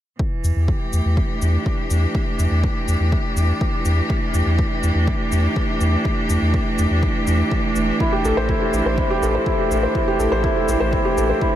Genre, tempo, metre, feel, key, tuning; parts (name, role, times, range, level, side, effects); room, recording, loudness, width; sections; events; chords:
piano and strings electronica; 123 BPM; 4/4; straight; E minor; A4 = 440 Hz
rich string quartet; sustained chords; 0.2-11.6 s; E3 to G4; -23 LUFS; right 1 dB; sidechain pumping
electronic kick drum; drums; 0.2-11.5 s; -23 LUFS; equal; overdrive
warm sub bass; bass; 0.4-11.3 s; E1 to E2; -19 LUFS; equal; sidechain pumping
shaker; drums; 0.4-11.3 s; -38 LUFS; left 3 dB; overdrive
felt-muted upright piano; riff; 8.0-11.6 s; E4 to C5; -19 LUFS; equal; diffuse ambient delay
moderate huge ambient reverb, RT60 8.2 s; dreamy mix soaked in reverb; -17 LUFS; side -11 dB against mid
0.2-11.6 A section
0.2 Em7; 8.0 Am7